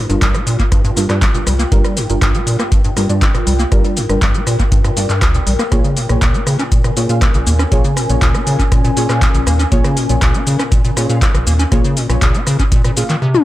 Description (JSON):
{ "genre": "acid house", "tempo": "120 BPM", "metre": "4/4", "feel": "straight", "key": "unclear", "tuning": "A4 = 440 Hz", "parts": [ { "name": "acid bass, square", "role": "riff", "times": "0.0-13.4 s", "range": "G1 to Db4", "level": "-18 LUFS", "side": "equal", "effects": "overdrive, sidechain pumping, tape echo" }, { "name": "deep dark ambient pad", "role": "texture", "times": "0.0-13.2 s", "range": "Db4 to Ab5", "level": "-24 LUFS", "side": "left 2 dB", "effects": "chorus, built-in reverb, sidechain pumping" }, { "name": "deep mellow chord stab", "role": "stabs", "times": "0.1-13.1 s", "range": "G3 to F5", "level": "-22 LUFS", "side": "right 1 dB", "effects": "chorus, vintage 12-bit sampler grit, tape echo" }, { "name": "round analog bass", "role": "bass", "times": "0.1-12.3 s", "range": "G1 to Eb2", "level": "-17 LUFS", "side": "equal", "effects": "tube saturation, sidechain pumping" }, { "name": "electro analog drum machine", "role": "drums", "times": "0.1-13.4 s", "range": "handclaps, hi-hat, rim click, shaker, toms", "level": "-20 LUFS", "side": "left 1 dB", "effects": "tape echo" }, { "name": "electronic kick drum", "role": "drums", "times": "0.2-12.8 s", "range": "none", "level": "-14 LUFS", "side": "equal", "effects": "none" } ], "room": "light reverb", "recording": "echo-heavy mix", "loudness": "-12 LUFS", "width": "side -15 dB against mid", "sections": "0.0-13.4 A section", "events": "none", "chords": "0.0 Gm7; 5.7 Bbm7" }